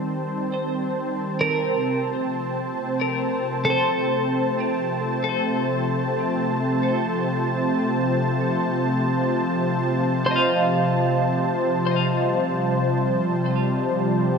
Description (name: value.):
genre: ambient.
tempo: free time.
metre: none.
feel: none.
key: unclear.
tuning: A4 = 439 Hz.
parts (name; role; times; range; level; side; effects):
warm analog pad; sustained chords; 0.0-14.4 s; C3 to A5; -21 LUFS; equal; chorus.
twelve-string electric guitar; arpeggios; 1.4-11.7 s; A4 to F5; -25 LUFS; equal; tremolo, ping-pong delay.
room: wet scoring stage reverb, RT60 1.9 s, digital ambience.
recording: cassette tape.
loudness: -20 LUFS.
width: side -5 dB against mid.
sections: 0.0-14.4 A section.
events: none.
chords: 0.0 Cm; 1.6 F/C.